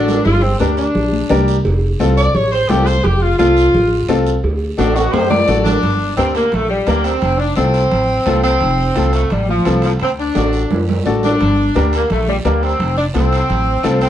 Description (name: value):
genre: latin, cumbia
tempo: 172 BPM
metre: 4/4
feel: straight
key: G minor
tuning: A4 = 440 Hz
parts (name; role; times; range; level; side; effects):
- clear saxophone section; melody; 0.0-14.1 s; F3 to D5; -16 LUFS; equal; none
- bright upright piano; accompaniment; 0.0-14.1 s; C4 to Bb4; -19 LUFS; left 2 dB; none
- upright bass; bass; 0.0-14.1 s; F1 to F#2; -18 LUFS; right 1 dB; none
- guiro; percussion; 0.1-14.1 s; none; -35 LUFS; right 7 dB; none
- timbales and cowbell; percussion; 0.1-14.1 s; none; -24 LUFS; right 3 dB; none
- congas; percussion; 0.3-14.0 s; none; -24 LUFS; left 2 dB; none
room: moderate studio reverb, RT60 0.8 s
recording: worn, warbling old tape, cassette tape, warbly pitch drift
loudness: -13 LUFS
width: side -11 dB against mid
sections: 0.0-5.8 A section; 5.8-14.1 B section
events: drum fill 0.0, 4.8-5.8, 10.4-11.4; saxophone section solo 0.0-5.8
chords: 0.3 Gm; 1.6 F; 4.4 D; 5.8 Gm; 7.2 F; 10.0 D; 11.4 Gm; 12.8 F